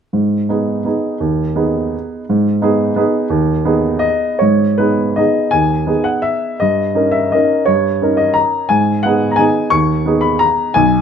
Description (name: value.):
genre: classical, piano waltz.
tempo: 148-190 BPM.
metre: 3/4.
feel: rubato.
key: G# minor.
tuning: A4 = 441 Hz.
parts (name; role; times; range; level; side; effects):
warm baby grand piano; solo; 0.1-11.0 s; B1 to C#6; -12 LUFS; equal; none.
room: light reverb.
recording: dark, warm production, lossy compression artefacts.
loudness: -13 LUFS.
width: side -7 dB against mid.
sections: 0.1-4.4 A section; 4.4-11.0 B section.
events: none.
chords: 0.1 G#m; 6.6 D#7/G; 8.7 G#m.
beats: | 0.13 0.50 0.86 | 1.21 1.56 1.94 | 2.28 2.61 2.96 | 3.31 3.66 4.04 | 4.43 4.80 5.18 | 5.54 5.89 6.25 | 6.61 6.97 7.34 | 7.68 8.02 8.36 | 8.71 9.05 9.40 | 9.74 10.08 10.43 | 10.77.